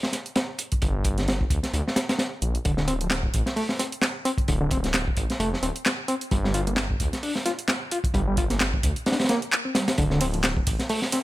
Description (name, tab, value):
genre	breakbeat, breaks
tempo	131 BPM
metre	4/4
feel	swing 56% on 16ths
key	D minor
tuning	A4 = 440 Hz
part	crunchy breakbeat drum kit	drums	0.0-11.2 s	hi-hat, kick drum, snare drum	-25 LUFS	equal	none
part	punchy analog drum machine	drums	0.1-11.2 s	handclaps, hi-hat, ride cymbal	-29 LUFS	equal	overdrive
part	detuned saw bass	bass	0.8-10.7 s	D1 to D2	-27 LUFS	equal	none
part	reed electric piano	riff	2.6-11.2 s	D3 to F4	-28 LUFS	equal	overdrive, fast tremolo, vintage 12-bit sampler grit, ping-pong delay
room	small room ambience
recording	none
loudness	-22 LUFS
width	side -17 dB against mid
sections	0.0-10.0 A section; 10.0-11.2 B section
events	kick drops out 9.1-10.0; drop 10.0-11.2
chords	0.0 N.C.; 10.0 D5